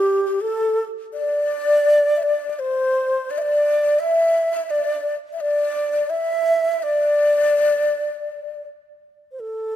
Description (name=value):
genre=chinese traditional, Chinese chamber ensemble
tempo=84 BPM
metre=4/4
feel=rubato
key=D shang mode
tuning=A4 = 440 Hz
part: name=xiao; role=melody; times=0.0-9.8 s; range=G4 to E5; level=-19 LUFS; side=right 1 dB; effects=none
part: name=breathy mellow xiao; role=second line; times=0.0-8.7 s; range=G4 to E5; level=-23 LUFS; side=left 5 dB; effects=none
room=light reverb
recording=close, detailed microphones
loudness=-17 LUFS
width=side -11 dB against mid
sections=0.0-9.0 A section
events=none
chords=none